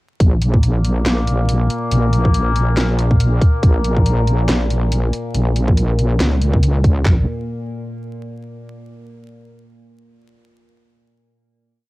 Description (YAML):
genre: deep dubstep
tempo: 140 BPM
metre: 4/4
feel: swing 57% on 16ths, half-time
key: Bb minor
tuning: A4 = 441 Hz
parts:
  - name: overtone-sweeping drone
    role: sustained chords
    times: 0.7-7.1 s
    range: Bb2 to Bb3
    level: -24 LUFS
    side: left 1 dB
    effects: chorus, built-in reverb
  - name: wobble bass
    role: bass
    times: 0.2-7.3 s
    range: Bb1 to Db2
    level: -16 LUFS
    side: equal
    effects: chorus
  - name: garage drum kit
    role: drums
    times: 0.2-7.2 s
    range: handclaps, kick drum, toms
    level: -14 LUFS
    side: equal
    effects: cassette tape
  - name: garage drum kit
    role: drums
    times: 0.2-6.9 s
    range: handclaps, hi-hat, snare drum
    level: -22 LUFS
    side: equal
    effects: cassette tape
room: digital ambience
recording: home recording on cassette, vinyl crackle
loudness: -14 LUFS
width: side -19 dB against mid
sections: 0.2-7.1 drop; 7.1-8.8 final note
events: drop 0.2-7.1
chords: 0.2 Bbm; 7.1 N.C.